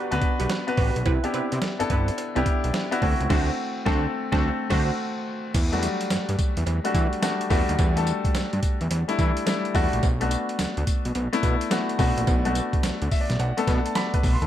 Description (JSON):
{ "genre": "R&B, new jack swing", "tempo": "107 BPM", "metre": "4/4", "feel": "swing 65% on 16ths", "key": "E minor", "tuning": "A4 = 440 Hz", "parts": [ { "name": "clear baby grand piano", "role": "accompaniment", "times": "0.0-14.5 s", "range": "F#3 to C6", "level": "-26 LUFS", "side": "left 2 dB", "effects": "none" }, { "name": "funky polysynth comp", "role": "stabs", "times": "0.0-4.9 s", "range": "C4 to C5", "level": "-31 LUFS", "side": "right 5 dB", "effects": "chorus" }, { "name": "fat analog bass", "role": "bass", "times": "0.1-14.5 s", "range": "G1 to E3", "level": "-26 LUFS", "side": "equal", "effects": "none" }, { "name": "boom bap sampler-style drum kit", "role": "drums", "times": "0.1-14.5 s", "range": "crash cymbal, hi-hat, kick drum, snare drum, tambourine", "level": "-25 LUFS", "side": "equal", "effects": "overdrive" }, { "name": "cowbell", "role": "percussion", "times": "0.5-14.1 s", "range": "none", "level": "-39 LUFS", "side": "right 13 dB", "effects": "none" } ], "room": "digital ambience", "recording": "none", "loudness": "-22 LUFS", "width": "side -11 dB against mid", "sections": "0.0-5.5 A section; 5.5-14.5 B section", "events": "band accent 3.3-5.5; kick muted 4.4-5.5; grand piano fill 12.8-14.5", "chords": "0.0 Gmaj7; 1.1 Cmaj7; 3.0 D7; 5.5 Em11; 10.0 Bm7" }